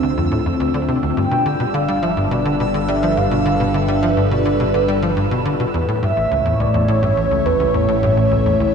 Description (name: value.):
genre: ambient, sequencer-driven space music.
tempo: 105 BPM.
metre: 4/4.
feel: straight.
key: unclear.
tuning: A4 = 440 Hz.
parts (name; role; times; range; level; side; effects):
phased analog pad; sustained chords; 0.0-8.7 s; A2 to E5; -20 LUFS; equal; phaser, chorus.
tight sequencer bass; riff; 0.0-8.7 s; A1 to G3; -20 LUFS; equal; wide subtle chorus, analog delay.
analog drone; bass; 0.0-8.7 s; G1 to D2; -23 LUFS; equal; chorus.
bubbling stepped-filter texture; texture; 0.0-8.7 s; E6; -33 LUFS; right 8 dB; chorus, built-in reverb.
mellow horn-like synth lead; melody; 1.2-8.7 s; B4 to G5; -21 LUFS; equal; chorus, cassette tape, analog delay.
room: wet concert hall reverb, RT60 2.4 s.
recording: dark, warm production.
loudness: -15 LUFS.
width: side -6 dB against mid.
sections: 0.0-8.7 A section.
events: fade-in on synth texture 0.0-8.7.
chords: 0.0 Dm7; 1.2 G7; 5.7 A.